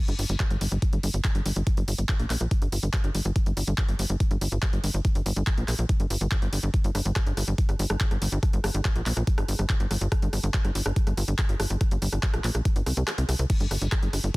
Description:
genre	psychedelic trance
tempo	142 BPM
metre	4/4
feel	straight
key	G minor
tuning	A4 = 440 Hz
part	tight sequencer bass	bass	0.1-14.3 s	G1 to C2	-26 LUFS	equal	tube saturation
part	drum and bass drum kit	drums	0.1-14.4 s	crash cymbal, handclaps, hi-hat, rim click	-32 LUFS	equal	overdrive, studio reverb
part	electronic kick drum	drums	0.4-14.4 s	none	-24 LUFS	equal	overdrive, studio reverb
room	digital ambience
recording	dense, heavily limited modern master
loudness	-23 LUFS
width	side -23 dB against mid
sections	0.0-14.4 A section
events	kick drops out 13.1-13.5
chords	none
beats	0.40 0.82 1.25 | 1.67 2.09 2.51 2.94 | 3.36 3.78 4.20 4.62 | 5.05 5.47 5.89 6.32 | 6.74 7.16 7.58 8.01 | 8.43 8.85 9.27 9.70 | 10.12 10.54 10.96 11.39 | 11.81 12.23 12.65 13.08 | 13.50 13.92 14.34

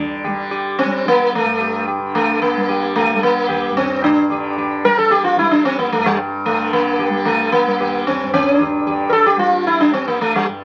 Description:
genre	indian classical, Hindustani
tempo	112 BPM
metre	4/4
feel	straight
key	G raga kafi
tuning	A4 = 440 Hz
part	sitar	melody	0.0-10.5 s	G3 to Bb4	-18 LUFS	equal	none
part	tanpura	drone	0.0-10.6 s	G2 to G3	-26 LUFS	equal	none
part	tabla	percussion	0.2-10.6 s	none	-34 LUFS	equal	none
room	moderate studio reverb, RT60 0.5 s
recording	very old 78 rpm record, vinyl crackle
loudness	-17 LUFS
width	mono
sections	0.0-10.6 A section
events	none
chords	none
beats	0.24 0.78 1.32 | 1.87 2.41 2.95 3.49 | 4.03 4.57 5.11 5.65 | 6.19 6.72 7.26 7.79 | 8.33 8.86 9.40 9.93 | 10.46

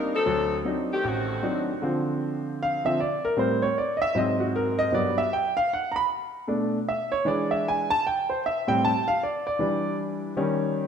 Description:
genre	jazz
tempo	154 BPM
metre	4/4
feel	swing 64% on 8ths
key	unclear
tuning	A4 = 439 Hz
part	warm saxophone section	melody	0.0-1.7 s	Eb3 to A4	-28 LUFS	left 2 dB	analog delay
part	clear baby grand piano	accompaniment	0.0-10.9 s	A1 to B5	-24 LUFS	equal	none
room	wet lush hall reverb, RT60 1.6 s, studio ambience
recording	dreamy mix soaked in reverb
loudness	-23 LUFS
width	side -7 dB against mid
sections	0.0-1.8 A section; 1.8-10.9 B section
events	grand piano solo 1.8-10.9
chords	0.3 D7b9; 1.8 Dm7; 3.4 Am7; 4.2 G#7; 4.9 Gmaj7; 6.5 Bm11; 7.3 E7; 8.0 Am7; 9.6 Em7; 10.4 Eb7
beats	| 0.26 0.65 1.04 1.43 | 1.82 2.21 2.60 2.98 | 3.37 3.76 4.15 4.54 | 4.93 5.32 5.71 6.09 | 6.48 6.87 7.26 7.65 | 8.04 8.43 8.81 9.20 | 9.59 9.98 10.37 10.76

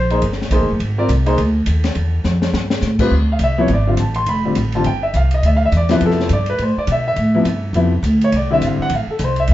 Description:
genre	modal jazz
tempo	207 BPM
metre	4/4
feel	swing 59% on 8ths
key	D dorian from 3.1 s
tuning	A4 = 440 Hz
part	upright bass	bass	0.0-9.5 s	F1 to B2	-16 LUFS	equal	none
part	clear baby grand piano	accompaniment	0.1-9.5 s	C3 to C6	-18 LUFS	left 1 dB	none
part	compact cocktail drum kit	drums	0.1-9.5 s	crash cymbal, hi-hat, kick drum, ride cymbal, snare drum	-26 LUFS	left 2 dB	none
room	wet studio reverb, RT60 0.6 s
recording	band playing live in one room, nothing above 7.7 kHz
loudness	-14 LUFS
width	side -14 dB against mid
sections	0.0-3.1 A section; 3.1-9.5 B section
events	drum fill 2.2-2.8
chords	0.0 Fm11 (rootless); 2.0 A5; 3.1 Dm11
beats	0.22 0.51 | 0.80 1.09 1.38 1.67 | 1.96 2.25 2.54 2.83 | 3.12 3.40 3.69 3.98 | 4.27 4.56 4.85 5.14 | 5.43 5.72 6.01 6.30 | 6.59 6.88 7.17 7.46 | 7.75 8.03 8.32 8.61 | 8.90 9.19 9.48

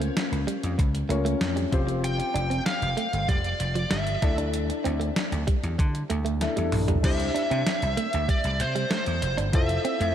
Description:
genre	1980s-style pop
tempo	96 BPM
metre	4/4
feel	straight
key	F major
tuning	A4 = 443 Hz
part	warm grand piano	accompaniment	0.0-10.1 s	C4 to E5	-32 LUFS	left 4 dB	slapback echo
part	direct-recorded clean electric guitar	riff	0.0-10.1 s	F3 to D4	-33 LUFS	right 5 dB	wide subtle chorus, slapback echo, digital delay
part	vintage slap bass	bass	0.0-10.1 s	F1 to D3	-28 LUFS	equal	none
part	clean 12-bit digital drum machine	drums	0.0-10.1 s	crash cymbal, hi-hat, kick drum, snare drum, toms	-28 LUFS	equal	none
part	smooth overdriven lead guitar	melody	2.0-10.1 s	C5 to G5	-29 LUFS	right 1 dB	slapback echo, digital delay
room	moderate lush hall reverb, RT60 3.1 s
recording	big arena sound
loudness	-23 LUFS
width	side -10 dB against mid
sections	0.0-7.0 A section; 7.0-10.1 B section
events	drum fill 6.4-7.0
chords	0.0 Bbmadd9/Db; 1.7 Fsus2; 4.2 Dsus2; 7.0 Cadd9; 9.5 Fmaj7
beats	0.16 0.79 1.41 | 2.04 2.66 3.29 3.91 | 4.54 5.16 5.79 6.41 | 7.04 7.66 8.29 8.91 | 9.54

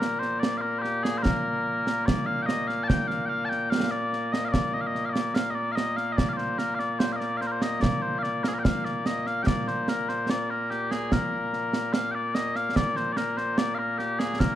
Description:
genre	scottish traditional, Scottish pipe music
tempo	73 BPM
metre	2/4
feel	straight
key	Bb major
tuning	A4 = 439 Hz
part	mellow small bagpipes	melody	0.0-14.6 s	Bb2 to A5	-26 LUFS	left 1 dB	none
part	concert snare drum and concert bass drum	drums	0.0-14.6 s	none	-28 LUFS	right 2 dB	none
room	moderate recital hall reverb, RT60 1.4 s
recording	dark, warm production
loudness	-24 LUFS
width	side -12 dB against mid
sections	0.0-9.5 A section; 9.5-14.6 A section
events	none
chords	none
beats	0.42 | 1.25 2.07 | 2.89 3.71 | 4.53 5.36 | 6.18 7.00 | 7.82 8.64 | 9.47 10.29 | 11.11 11.93 | 12.75 13.58 | 14.40

